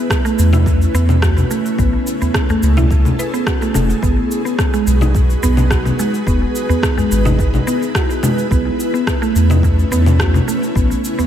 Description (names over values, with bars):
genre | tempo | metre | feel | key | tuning
organic downtempo | 107 BPM | 4/4 | straight | B mixolydian | A4 = 443 Hz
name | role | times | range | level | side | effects
ethereal airy pad | sustained chords | 0.0-11.3 s | A3 to B4 | -22 LUFS | equal | ensemble chorus, built-in reverb, tremolo, sidechain pumping
mallet-like synth pluck | arpeggios | 0.0-11.3 s | G#3 to B4 | -19 LUFS | right 1 dB | chorus, tape echo
electronic kick drum | drums | 0.1-10.9 s | none | -18 LUFS | equal | none
electronic rim click, cabasa and congas | drums | 0.1-11.3 s | none | -21 LUFS | left 1 dB | none
warm sub bass | bass | 0.4-10.9 s | E1 to E2 | -14 LUFS | equal | sidechain pumping
udu | percussion | 0.7-11.3 s | none | -23 LUFS | left 1 dB | none
room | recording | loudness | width
light reverb | none | -13 LUFS | side -10 dB against mid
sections
0.0-11.3 A section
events
none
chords
0.0 B9sus4; 1.8 Amaj7; 4.0 G#m7; 6.3 Emaj7; 8.5 B9sus4; 10.8 Amaj7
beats
0.10 0.66 1.22 | 1.78 2.35 2.91 3.47 | 4.03 4.59 5.15 5.71 | 6.27 6.83 7.39 7.95 | 8.51 9.07 9.64 10.20 | 10.76